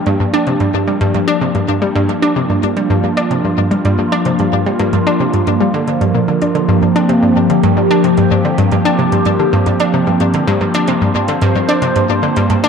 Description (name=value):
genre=ambient, sequencer-driven space music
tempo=111 BPM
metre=4/4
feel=straight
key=G minor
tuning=A4 = 442 Hz
part: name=phased analog pad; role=sustained chords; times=0.0-12.7 s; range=F3 to C5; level=-14 LUFS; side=equal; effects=phaser, chorus
part: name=analog pluck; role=riff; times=0.0-12.7 s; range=G2 to D4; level=-14 LUFS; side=equal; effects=chorus, ping-pong delay
part: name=electronic hi-hat and congas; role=percussion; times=0.1-12.6 s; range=none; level=-37 LUFS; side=right 3 dB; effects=ping-pong delay
room=wet spring reverb, RT60 2.6 s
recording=echo-heavy mix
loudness=-11 LUFS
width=side -6 dB against mid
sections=0.0-12.7 A section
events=fade-in on drum 0.0-12.7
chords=0.0 Gm7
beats=| 0.07 0.61 1.15 1.69 | 2.23 2.77 3.31 3.85 | 4.39 4.93 5.47 6.01 | 6.55 7.09 7.63 8.17 | 8.71 9.25 9.79 10.34 | 10.88 11.42 11.96 12.50